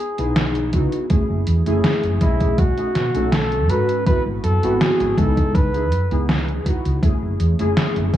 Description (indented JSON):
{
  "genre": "vaporwave",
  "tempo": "81 BPM",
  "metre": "4/4",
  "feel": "straight",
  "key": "F# dorian",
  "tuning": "A4 = 438 Hz",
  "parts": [
    { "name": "warm flugelhorn", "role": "melody", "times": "0.0-8.2 s", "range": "E4 to B4", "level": "-24 LUFS", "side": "right 1 dB", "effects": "tape echo" },
    { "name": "warbly lo-fi synth keys", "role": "accompaniment", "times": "0.2-8.2 s", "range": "G#3 to D#5", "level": "-22 LUFS", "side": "equal", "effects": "lush chorus, vintage 12-bit sampler grit, tape echo" },
    { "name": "woody fretless electric bass", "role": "bass", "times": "0.2-8.2 s", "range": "F#1 to C#3", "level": "-21 LUFS", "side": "equal", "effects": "wide subtle chorus" },
    { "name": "detuned 8-bit digital drum machine", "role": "drums", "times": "0.2-8.2 s", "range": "hi-hat, snare drum", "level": "-22 LUFS", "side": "equal", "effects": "gated reverb" },
    { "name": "electronic kick drum", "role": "drums", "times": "0.7-8.2 s", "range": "none", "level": "-19 LUFS", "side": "equal", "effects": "overdrive" }
  ],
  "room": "little or no reverb",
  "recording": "cassette tape, small room ambience",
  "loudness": "-16 LUFS",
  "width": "side -12 dB against mid",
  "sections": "0.0-8.2 A section",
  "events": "none",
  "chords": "0.0 C#m9; 1.1 F#m9; 2.6 B13; 4.1 G#7alt; 5.5 C#m9; 7.0 F#m9"
}